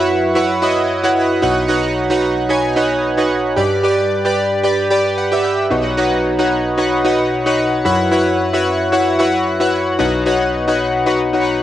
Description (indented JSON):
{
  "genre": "pop",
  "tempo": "112 BPM",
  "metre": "4/4",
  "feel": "swing 55% on 16ths",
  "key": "B major",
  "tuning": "A4 = 440 Hz",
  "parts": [
    { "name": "chorused retro synth keys", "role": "solo", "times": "0.0-11.6 s", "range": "B1 to G#5", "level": "-14 LUFS", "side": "equal", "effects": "tape echo" }
  ],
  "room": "moderate spring reverb, RT60 1.2 s, digital ambience",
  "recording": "home recording on cassette, nothing above 10.8 kHz",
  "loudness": "-13 LUFS",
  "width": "side -12 dB against mid",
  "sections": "0.0-11.6 A section",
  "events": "synth keys fill 4.6-5.7",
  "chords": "0.0 F#7sus4; 1.4 Badd9; 3.6 G; 5.7 Badd9; 7.9 F#7sus4; 10.0 Badd9",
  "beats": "0.36 0.89 | 1.43 1.96 2.50 3.03 | 3.57 4.11 4.64 5.18 | 5.71 6.25 6.78 7.32 | 7.86 8.39 8.93 9.46 | 10.00 10.53 11.07 11.61"
}